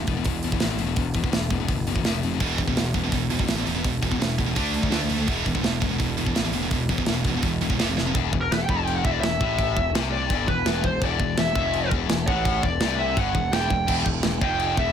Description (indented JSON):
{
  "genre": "heavy metal",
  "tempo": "167 BPM",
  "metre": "4/4",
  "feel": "straight",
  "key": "E minor",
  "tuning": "A4 = 440 Hz",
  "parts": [
    { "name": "scooped high-gain guitar", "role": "riff", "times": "0.0-14.9 s", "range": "E2 to D4", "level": "-28 LUFS", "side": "left 11 dB", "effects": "distortion" },
    { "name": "fuzz picked electric bass", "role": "bass", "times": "0.0-14.9 s", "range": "E1 to D2", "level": "-28 LUFS", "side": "equal", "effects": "overdrive" },
    { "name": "tight metal drum kit", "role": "drums", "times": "0.1-14.9 s", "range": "china cymbal, crash cymbal, hi-hat, kick drum, snare drum", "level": "-26 LUFS", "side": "right 1 dB", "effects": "none" },
    { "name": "scooped high-gain guitar", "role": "riff", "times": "2.4-8.2 s", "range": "E2 to D4", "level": "-27 LUFS", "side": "right 12 dB", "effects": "distortion" },
    { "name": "high-gain lead guitar", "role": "melody", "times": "8.4-14.9 s", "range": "A#4 to B5", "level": "-26 LUFS", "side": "right 1 dB", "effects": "distortion, digital delay" }
  ],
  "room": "light reverb",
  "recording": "none",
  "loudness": "-21 LUFS",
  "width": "side -8 dB against mid",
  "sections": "0.0-8.2 A section; 8.2-14.9 B section",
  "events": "drum fill 8.0; lead electric guitar solo 8.2-14.9",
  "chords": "0.0 E5; 2.1 F5; 2.4 E5; 4.6 D5; 5.3 E5; 7.8 F5; 8.2 N.C.",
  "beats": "0.26 0.62 | 0.98 1.34 1.70 2.06 | 2.42 2.77 3.13 3.49 | 3.85 4.21 4.57 4.93 | 5.29 5.65 6.01 6.37 | 6.72 7.08 7.44 7.80 | 8.16 8.52 8.88 9.24 | 9.60 9.95 10.31 10.67 | 11.03 11.39 11.75 12.10 | 12.46 12.82 13.18 13.54 | 13.89 14.25 14.61"
}